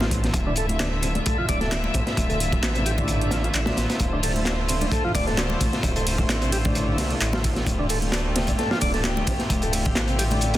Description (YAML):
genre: breakbeat, breaks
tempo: 131 BPM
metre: 4/4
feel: swing 54% on 16ths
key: D minor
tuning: A4 = 438 Hz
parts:
  - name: warm studio string section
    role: sustained chords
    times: 0.0-10.6 s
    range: D3 to E5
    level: -29 LUFS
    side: equal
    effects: vintage 12-bit sampler grit, sidechain pumping
  - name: tonewheel organ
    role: riff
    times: 0.0-10.6 s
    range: C3 to D4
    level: -30 LUFS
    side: equal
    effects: slow rotary speaker, tube saturation, tape echo
  - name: detuned saw bass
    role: bass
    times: 0.0-10.6 s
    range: D1 to C2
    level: -26 LUFS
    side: equal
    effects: tube saturation
  - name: crunchy breakbeat drum kit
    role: drums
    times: 0.0-10.6 s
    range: hi-hat, kick drum, snare drum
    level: -25 LUFS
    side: equal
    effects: none
  - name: congas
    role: percussion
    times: 0.0-10.4 s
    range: none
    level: -34 LUFS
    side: left 3 dB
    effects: none
  - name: punchy analog drum machine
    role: drums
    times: 0.1-10.5 s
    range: handclaps, hi-hat, ride cymbal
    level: -31 LUFS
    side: equal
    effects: overdrive
room: light reverb, studio reverb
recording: dense, heavily limited modern master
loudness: -21 LUFS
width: side -14 dB against mid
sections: 0.0-10.6 A section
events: none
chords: 0.0 Dm7